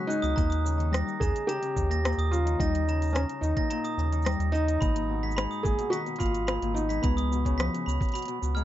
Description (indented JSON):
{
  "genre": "folktronica",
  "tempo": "108 BPM",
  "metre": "4/4",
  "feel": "straight",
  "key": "unclear",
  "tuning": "A4 = 439 Hz",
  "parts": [
    { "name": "felt-muted upright piano", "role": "melody", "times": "0.0-8.6 s", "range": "B3 to G#4", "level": "-31 LUFS", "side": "equal", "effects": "plate reverb, ping-pong delay" },
    { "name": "Celtic harp", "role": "arpeggios", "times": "0.0-8.6 s", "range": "G#2 to G#3", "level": "-34 LUFS", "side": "left 6 dB", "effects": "plate reverb, ping-pong delay" },
    { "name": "glockenspiel with brass mallets", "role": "second line", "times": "0.1-8.6 s", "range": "A#5 to B6", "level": "-35 LUFS", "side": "right 4 dB", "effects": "plate reverb, ping-pong delay" },
    { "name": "organic electronic drum kit", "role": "drums", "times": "0.1-8.6 s", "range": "cabasa, hi-hat, rim click", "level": "-35 LUFS", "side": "left 1 dB", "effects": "overdrive" },
    { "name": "round analog bass", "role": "bass", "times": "0.2-8.6 s", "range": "G#1 to D#2", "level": "-28 LUFS", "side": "equal", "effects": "none" },
    { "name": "electronic kick drum", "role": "drums", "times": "0.4-8.1 s", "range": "none", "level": "-29 LUFS", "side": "equal", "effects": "none" }
  ],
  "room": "light reverb",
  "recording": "nothing above 7.7 kHz",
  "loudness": "-25 LUFS",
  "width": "side -13 dB against mid",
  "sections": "0.0-8.6 A section",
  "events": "none",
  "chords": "0.4 D#7; 4.8 G#madd9; 7.0 C#7(no3)",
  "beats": "| 0.37 0.93 1.48 2.04 | 2.59 3.15 3.70 4.26 | 4.82 5.37 5.93 6.48 | 7.04 7.59 8.15"
}